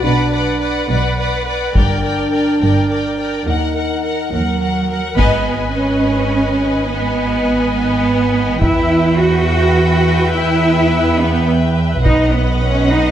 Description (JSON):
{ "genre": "cinematic, epic orchestral film score", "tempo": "70 BPM (dotted quarters)", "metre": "6/8", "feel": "straight", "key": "unclear", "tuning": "A4 = 440 Hz", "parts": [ { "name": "warm symphonic violin section", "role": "melody", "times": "0.0-13.1 s", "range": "F#5 to G#5", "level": "-26 LUFS", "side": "left 5 dB", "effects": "none" }, { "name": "warm symphonic violin section", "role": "second line", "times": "0.0-13.1 s", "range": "D5 to Gb5", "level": "-24 LUFS", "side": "left 4 dB", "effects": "none" }, { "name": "rich symphonic viola section", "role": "accompaniment", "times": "0.0-13.1 s", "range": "Bb4 to B4", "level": "-23 LUFS", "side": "equal", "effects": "none" }, { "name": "mellow French horn section", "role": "sustained chords", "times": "0.0-4.3 s", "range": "D4 to Eb4", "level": "-20 LUFS", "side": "equal", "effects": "none" }, { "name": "rich symphonic cello section", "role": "bass", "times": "0.0-13.1 s", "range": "Eb2 to F#4", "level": "-17 LUFS", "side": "right 2 dB", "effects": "none" }, { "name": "rich symphonic double bass section", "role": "bass", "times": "0.0-13.1 s", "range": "G1 to E2", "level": "-18 LUFS", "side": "right 2 dB", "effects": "none" }, { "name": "taiko ensemble", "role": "drums", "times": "1.8-13.1 s", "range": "none", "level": "-18 LUFS", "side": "equal", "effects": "none" } ], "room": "moderate scoring stage reverb, RT60 1.6 s", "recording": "none", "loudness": "-13 LUFS", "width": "side -10 dB against mid", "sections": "0.0-5.2 A section; 5.2-13.1 B section", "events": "band accent 5.2-5.8", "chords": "0.0 Bm; 1.8 Gm; 3.5 Ebm; 5.2 G#m; 8.6 Em; 12.0 B" }